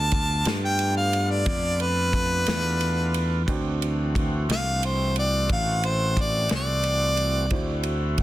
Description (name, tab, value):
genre	slow blues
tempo	60 BPM (dotted quarters)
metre	12/8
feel	straight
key	D mixolydian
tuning	A4 = 443 Hz
part	warm harmonica	melody	0.0-7.8 s	B4 to A5	-25 LUFS	equal	none
part	tonewheel organ	sustained chords	0.0-8.2 s	E3 to F#4	-33 LUFS	equal	slow rotary speaker, overdrive
part	picked electric bass	bass	0.0-8.2 s	A1 to G2	-25 LUFS	equal	none
part	natural country drum kit	drums	0.1-8.2 s	kick drum, ride cymbal, snare drum	-29 LUFS	equal	none
part	warm upright piano	accompaniment	3.5-8.2 s	C4 to C5	-34 LUFS	right 4 dB	none
room	small room ambience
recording	dense, heavily limited modern master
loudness	-21 LUFS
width	side -15 dB against mid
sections	0.0-8.2 A section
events	harmonica solo 0.0-8.2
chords	0.0 G7; 3.5 D7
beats	0.46 1.47 2.48 | 3.48 4.49 5.50 6.51 | 7.52